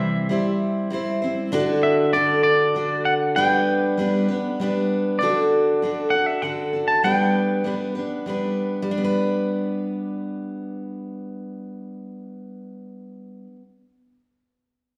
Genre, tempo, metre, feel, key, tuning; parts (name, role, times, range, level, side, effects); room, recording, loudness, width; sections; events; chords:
country; 98 BPM; 3/4; straight; G major; A4 = 443 Hz
twangy electric guitar; melody; 0.0-8.2 s; D5 to A5; -24 LUFS; equal
picked steel-string acoustic guitar; accompaniment; 0.0-13.7 s; C3 to C5; -24 LUFS; equal
wet recital hall reverb, RT60 1.4 s; heard from further back in the room; -22 LUFS; mono
0.0-5.2 A section; 5.2-8.9 B section; 8.9-12.6 C section
0.0 C; 1.5 D; 3.4 G; 5.2 D; 7.0 G